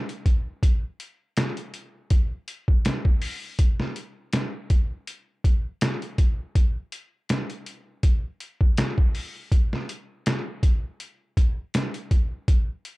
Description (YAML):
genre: trip hop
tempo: 81 BPM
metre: 4/4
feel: swing 55% on 16ths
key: none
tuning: none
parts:
  - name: trip hop sampler-style drum kit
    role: drums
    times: 0.1-13.0 s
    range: hi-hat, kick drum, snare drum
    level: -21 LUFS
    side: equal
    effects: none
room: little or no reverb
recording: dark, warm production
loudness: -22 LUFS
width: side -22 dB against mid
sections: 0.0-13.0 A section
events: none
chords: none